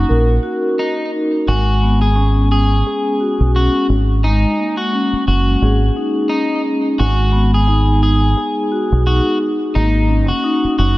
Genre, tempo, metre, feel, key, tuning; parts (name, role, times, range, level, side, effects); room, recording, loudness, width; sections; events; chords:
hip hop; 87 BPM; 4/4; swing 57% on 16ths; A4 = 439 Hz
electric guitar at the edge of break-up; melody; 0.0-11.0 s; D#4 to G#4; -21 LUFS; equal; high-pass filter, low-pass filter, tape echo
vibraphone with soft mallets; accompaniment; 0.0-11.0 s; G#3 to A#4; -18 LUFS; left 1 dB; high-pass filter, low-pass filter, tape echo
deep dub fingered electric bass; bass; 0.0-11.0 s; F#1 to B1; -14 LUFS; equal
small room reverb; echo-heavy mix; -13 LUFS; side -18 dB against mid
0.0-11.0 A section
0.0 D#m7; 1.5 C#7sus4/G#; 3.9 D#7sus4; 7.0 G#m7; 9.8 D#m7